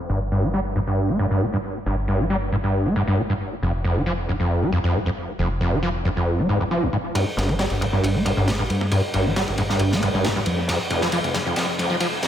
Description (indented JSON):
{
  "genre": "breakbeat, breaks",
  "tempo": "136 BPM",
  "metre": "4/4",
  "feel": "straight",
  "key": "unclear",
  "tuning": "A4 = 440 Hz",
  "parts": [
    { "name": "fingered electric bass", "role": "bass", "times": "0.0-12.3 s", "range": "F1 to G2", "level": "-28 LUFS", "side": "equal", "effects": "low-pass filter" },
    { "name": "screaming distorted acid line", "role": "riff", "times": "0.1-12.3 s", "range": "F1 to Bb3", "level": "-21 LUFS", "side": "equal", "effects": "distortion, wide subtle chorus, analog delay" },
    { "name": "crunchy breakbeat drum kit", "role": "drums", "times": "7.2-12.3 s", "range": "kick drum, ride cymbal, snare drum", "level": "-26 LUFS", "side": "equal", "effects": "high-pass filter on kick, high-pass filter on cymbals, high-pass filter on snare, high-pass filter on room, analog delay" }
  ],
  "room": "moderate echo chamber reverb, RT60 1.4 s, small room ambience",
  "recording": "echo-heavy mix, high-pass filter, low-pass filter",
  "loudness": "-20 LUFS",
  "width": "side -10 dB against mid",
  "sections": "0.0-7.2 A section; 7.2-12.3 B section",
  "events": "filter sweep on acid bass 0.0-7.2, 7.2-12.3; filter sweep 0.0-7.2, 7.2-12.3; build-up 7.2-12.3; drum fill 10.7-12.3",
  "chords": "0.1 N.C.; 10.7 F5"
}